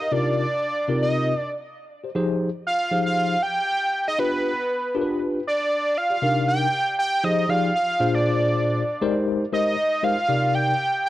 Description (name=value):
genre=funk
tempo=118 BPM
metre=4/4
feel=swing 56% on 16ths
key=C minor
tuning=A4 = 441 Hz
part: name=fat analog lead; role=melody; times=0.0-11.1 s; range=B4 to G5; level=-22 LUFS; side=right 1 dB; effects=none
part: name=tine electric piano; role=accompaniment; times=0.0-10.7 s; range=Bb2 to Eb5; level=-23 LUFS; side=left 2 dB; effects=medium stereo tremolo
room=moderate large studio reverb, RT60 1.0 s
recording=none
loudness=-20 LUFS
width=side -15 dB against mid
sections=0.0-6.2 A section; 6.2-11.1 B section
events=none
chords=0.0 Cm11; 2.2 Fm9; 4.2 G7; 6.2 Cm9; 7.2 Fm7; 8.0 Bb9; 9.0 Abmaj9; 10.3 Cm9